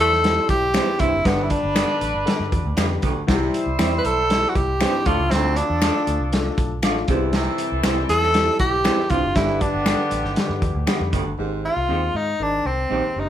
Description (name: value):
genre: uptempo 1960s-style soul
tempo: 118 BPM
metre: 4/4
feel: straight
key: C major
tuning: A4 = 440 Hz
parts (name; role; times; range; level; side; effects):
- warm tenor saxophone; melody; 0.0-13.3 s; B3 to B4; -20 LUFS; equal; none
- clear horn section; second line; 0.0-11.1 s; D3 to C5; -29 LUFS; right 1 dB; none
- warm upright piano; accompaniment; 0.0-13.3 s; D3 to Bb4; -28 LUFS; left 4 dB; none
- vintage muted fingered electric bass; bass; 0.0-13.3 s; F#1 to Ab2; -26 LUFS; equal; none
- vintage drum kit; drums; 0.1-11.2 s; hi-hat, kick drum, snare drum; -24 LUFS; equal; none
- electric guitar through a small old amp; stabs; 0.7-13.0 s; B3 to D5; -27 LUFS; right 5 dB; none
- finger snaps; percussion; 0.7-11.0 s; none; -30 LUFS; left 4 dB; none
- mellow baritone saxophone; riff; 0.8-13.3 s; D2 to C3; -28 LUFS; right 5 dB; none
room: wet studio reverb, RT60 0.6 s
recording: band playing live in one room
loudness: -18 LUFS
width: side -10 dB against mid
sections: 0.0-11.4 A section; 11.4-13.3 B section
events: none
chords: 0.0 C; 1.3 G; 3.3 C; 5.1 Dm; 7.1 C; 9.4 G; 11.4 Abmaj7